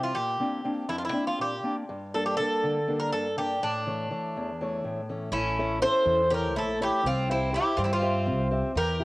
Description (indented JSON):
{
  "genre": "greek folk, Greek bouzouki band",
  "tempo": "245 BPM (eighths)",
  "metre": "7/8",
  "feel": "straight",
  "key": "unclear",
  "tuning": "A4 = 441 Hz",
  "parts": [
    { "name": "Greek bouzouki", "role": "melody", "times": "0.0-9.0 s", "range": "D4 to C5", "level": "-27 LUFS", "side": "equal", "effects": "cassette tape" },
    { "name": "fingerpicked steel-string acoustic guitar", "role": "accompaniment", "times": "0.0-9.0 s", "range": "E2 to E5", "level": "-31 LUFS", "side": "left 1 dB", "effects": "none" },
    { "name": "Greek bouzouki", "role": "second line", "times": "5.3-9.0 s", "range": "C4 to A4", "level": "-32 LUFS", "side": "right 1 dB", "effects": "none" },
    { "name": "upright bass", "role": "bass", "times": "5.3-9.0 s", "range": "A1 to G2", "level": "-31 LUFS", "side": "equal", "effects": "none" }
  ],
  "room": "moderate spring reverb, RT60 2.6 s",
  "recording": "home recording on cassette",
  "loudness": "-25 LUFS",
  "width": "side -21 dB against mid",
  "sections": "0.0-5.3 A section; 5.3-9.0 B section",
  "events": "none",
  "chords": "0.2 Bbadd9; 1.9 Gm; 3.6 A; 7.0 C"
}